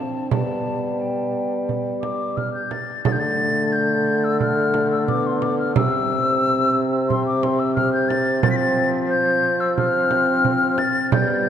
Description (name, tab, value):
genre	classical, renaissance-style consort dance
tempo	89 BPM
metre	4/4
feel	straight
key	unclear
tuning	A4 = 443 Hz
part	mellow hollow silver concert flute	melody	0.0-11.5 s	G5 to B6	-22 LUFS	left 3 dB	none
part	warm trombone	accompaniment	0.0-11.5 s	A3 to C4	-25 LUFS	equal	none
part	mellow bassoon	bass	0.0-11.5 s	C3 to G3	-23 LUFS	equal	none
part	frame drum	percussion	0.3-11.4 s	none	-26 LUFS	right 6 dB	none
room	wet church reverb, RT60 3.6 s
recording	dark, warm production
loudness	-18 LUFS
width	side -9 dB against mid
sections	0.0-3.1 A section; 3.1-11.5 A section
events	none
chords	0.3 G; 3.1 D5; 5.8 C; 8.4 F5